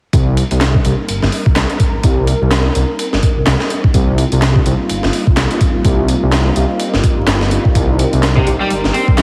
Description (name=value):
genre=breakbeat, breaks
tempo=126 BPM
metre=4/4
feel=swing 58% on 16ths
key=C minor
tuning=A4 = 438 Hz
part: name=phased analog pad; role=sustained chords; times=0.5-9.2 s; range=G3 to Bb4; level=-23 LUFS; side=equal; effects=phaser, chorus, sidechain pumping
part: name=dark detuned saw bass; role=bass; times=0.1-9.2 s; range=G1 to C2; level=-17 LUFS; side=equal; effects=none
part: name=breakbeat sampler-style drum kit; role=drums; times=0.1-9.2 s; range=hi-hat, kick drum, snare drum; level=-17 LUFS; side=equal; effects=none
part: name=electronic handclaps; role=drums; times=0.6-9.2 s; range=none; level=-27 LUFS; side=equal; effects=none
part: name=overdriven semi-hollow guitar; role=riff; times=8.4-9.2 s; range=C3 to C4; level=-19 LUFS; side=equal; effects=vintage 12-bit sampler grit, digital delay
room=light reverb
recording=heavily compressed radio sound, multiband compression, vinyl crackle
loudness=-14 LUFS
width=mono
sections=0.1-9.2 A section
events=none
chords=0.1 Cm7